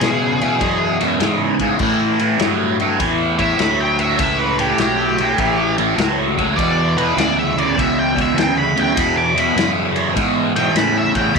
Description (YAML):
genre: blues rock power trio and southern rock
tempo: 100 BPM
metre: 4/4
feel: swing 66% on 8ths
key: unclear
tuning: A4 = 440 Hz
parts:
  - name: octave-fuzz lead guitar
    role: melody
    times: 0.0-11.4 s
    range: G4 to D6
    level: -20 LUFS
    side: equal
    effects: wah, distortion
  - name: cranked stack guitar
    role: riff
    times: 0.0-11.3 s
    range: E2 to F#3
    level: -17 LUFS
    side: right 1 dB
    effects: overdrive, phaser
  - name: fuzz fingered electric bass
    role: bass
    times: 0.0-11.4 s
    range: A1 to B2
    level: -24 LUFS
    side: equal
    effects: overdrive
  - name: vintage drum kit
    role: drums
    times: 0.0-11.4 s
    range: crash cymbal, kick drum, ride cymbal, snare drum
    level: -24 LUFS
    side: left 4 dB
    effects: none
room: moderate echo chamber reverb, RT60 2.2 s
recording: 1960s-style stereo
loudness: -14 LUFS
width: side -4 dB against mid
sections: 0.0-11.4 A section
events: lead electric guitar solo 0.0-11.4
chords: 0.0 E; 1.8 A7; 6.6 E7